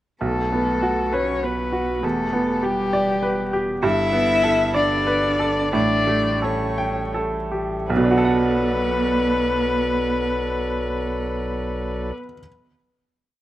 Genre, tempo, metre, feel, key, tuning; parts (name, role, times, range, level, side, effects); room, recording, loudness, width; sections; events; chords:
neoclassical piano and strings; 79-101 BPM; 3/4; rubato; B minor; A4 = 440 Hz
warm violin; melody; 0.2-12.1 s; G4 to E5; -23 LUFS; left 4 dB; slapback echo
rich cello; second line; 0.2-12.1 s; G3 to E4; -27 LUFS; right 3 dB; slapback echo
bright baby grand piano; accompaniment; 0.2-12.5 s; B1 to G5; -22 LUFS; right 2 dB; slapback echo
pedal harmonium; sustained chords; 0.2-12.1 s; F#3 to E5; -30 LUFS; right 1 dB
saturated sub bass; bass; 0.2-12.1 s; E1 to B1; -32 LUFS; equal
light reverb; recorded outdoors, with no room sound; -19 LUFS; side -14 dB against mid
0.2-7.9 theme; 7.9-12.4 final chord
slowing down 2.9-7.9
0.2 B5; 2.0 Em7; 3.8 Gadd9; 5.7 A7; 7.9 Bm7